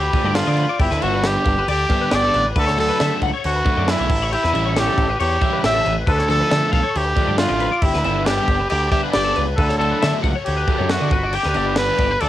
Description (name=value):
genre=math rock and midwest emo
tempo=137 BPM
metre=4/4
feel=straight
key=G lydian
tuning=A4 = 440 Hz
part: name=clear trumpet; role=melody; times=0.0-12.3 s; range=E4 to E5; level=-20 LUFS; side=equal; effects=cassette tape
part: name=twelve-string electric guitar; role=accompaniment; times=0.0-0.8 s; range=none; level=barely audible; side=none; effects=none
part: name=twelve-string electric guitar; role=arpeggios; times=0.0-12.3 s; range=G4 to F#5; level=-26 LUFS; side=left 9 dB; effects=ensemble chorus, cassette tape
part: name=growling picked electric bass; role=bass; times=0.0-12.3 s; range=G1 to D3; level=-23 LUFS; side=equal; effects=overdrive
part: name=crunchy overdriven guitar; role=riff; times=0.1-12.1 s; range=D3 to E4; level=-24 LUFS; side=right 1 dB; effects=cassette tape
part: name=crisp fusion drum kit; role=drums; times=0.1-12.3 s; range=crash cymbal, kick drum, snare drum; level=-23 LUFS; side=equal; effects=cassette tape
room=studio ambience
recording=home recording on cassette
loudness=-16 LUFS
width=side -13 dB against mid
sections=0.0-12.3 A section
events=none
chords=0.0 Dm6; 0.8 G; 2.6 Dmaj7; 4.1 A7; 6.1 Dm6; 7.8 G6; 9.6 Dmaj7; 11.1 G